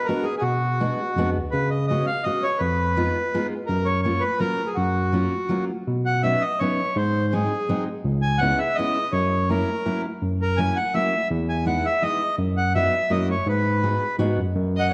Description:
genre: musette waltz.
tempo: 166 BPM.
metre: 3/4.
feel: straight.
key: F# major, B major from 5.9 s.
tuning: A4 = 440 Hz.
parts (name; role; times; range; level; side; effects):
accordion; melody; 0.0-14.9 s; F#4 to G#5; -26 LUFS; equal; none.
fingerpicked steel-string acoustic guitar; accompaniment; 0.1-14.9 s; F#3 to F#4; -30 LUFS; equal; none.
overdriven tine electric piano; bass; 0.4-14.9 s; C#2 to C#3; -26 LUFS; equal; none.
dark violin; second line; 14.8-14.9 s; D#5; -28 LUFS; equal; none.
room: moderate recital hall reverb, RT60 1.7 s.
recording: none.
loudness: -23 LUFS.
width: mono.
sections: 0.0-5.9 A section; 5.9-14.9 B section.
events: none.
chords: 0.0 Bm6; 1.5 C#7sus4; 2.6 Fm7b5; 3.7 F#maj7; 5.9 Badd9; 7.0 G#7; 8.0 C#m7; 9.1 F#7; 11.3 Emaj7; 12.4 B/F#; 13.1 F#7; 13.5 G#m7.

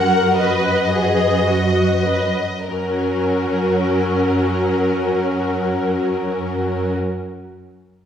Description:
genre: classical, dramatic, fast romantic movement for symphony orchestra.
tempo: free time.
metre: none.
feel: none.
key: F# major.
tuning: A4 = 441 Hz.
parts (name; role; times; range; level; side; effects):
warm symphonic violin section; melody; 0.0-6.9 s; A#4 to F#5; -23 LUFS; left 2 dB; none.
dark symphonic violin section; second line; 0.0-6.9 s; F#4 to B4; -24 LUFS; left 2 dB; none.
rich symphonic viola section; accompaniment; 0.0-6.9 s; F#3 to B4; -21 LUFS; equal; none.
warm symphonic cello section; bass; 0.0-6.9 s; F#2; -23 LUFS; right 2 dB; none.
room: wet recital hall reverb, RT60 1.4 s.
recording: heard from further back in the room.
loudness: -16 LUFS.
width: side -8 dB against mid.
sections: 0.0-2.7 A section; 2.7-7.5 B section.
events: slowing down 0.0-2.7.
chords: 0.4 B/F#; 2.7 F#.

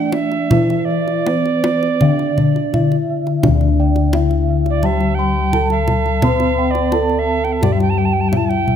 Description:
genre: Javanese gamelan.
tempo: 77-86 BPM.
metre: 4/4.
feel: straight.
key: D slendro.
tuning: A4 = 440 Hz.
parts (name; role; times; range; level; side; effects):
gamelan-type bronze metallophone; melody; 0.0-8.8 s; C4-45c to C5-45c; -21 LUFS; equal; none.
mellow reedy alto recorder; second line; 0.0-8.8 s; D5 to A5+29c; -21 LUFS; right 7 dB; none.
gamelan-type bronze metallophone; accompaniment; 0.0-8.8 s; D3 to C4-45c; -22 LUFS; left 2 dB; none.
gamelan-type bossed gongs; arpeggios; 0.0-8.7 s; C5-45c to C6-45c; -28 LUFS; left 3 dB; none.
gamelan-type bronze metallophone; arpeggios; 0.0-8.8 s; C5-45c to C6-45c; -26 LUFS; right 10 dB; none.
gamelan-type bossed gongs; bass; 0.0-8.8 s; D2 to C5-45c; -18 LUFS; left 3 dB; none.
kendang; percussion; 0.1-8.8 s; none; -21 LUFS; equal; none.
room: moderate recital hall reverb, RT60 1.8 s.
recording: close, detailed microphones.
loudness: -14 LUFS.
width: side -8 dB against mid.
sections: 0.0-3.4 A section; 3.4-8.8 B section.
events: none.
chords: none.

